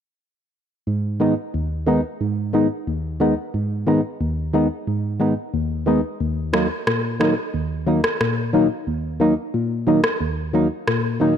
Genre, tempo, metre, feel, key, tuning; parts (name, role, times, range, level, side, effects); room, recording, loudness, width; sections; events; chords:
dancehall; 90 BPM; 4/4; straight; G# minor; A4 = 441 Hz
percussive organ stab; accompaniment; 0.9-11.4 s; D#2 to D#4; -19 LUFS; equal; chorus
electronic rim click; drums; 6.5-11.0 s; -23 LUFS; equal
light reverb, digital ambience; -19 LUFS; side -8 dB against mid
0.9-11.4 A section
0.9 G#m; 6.2 D#m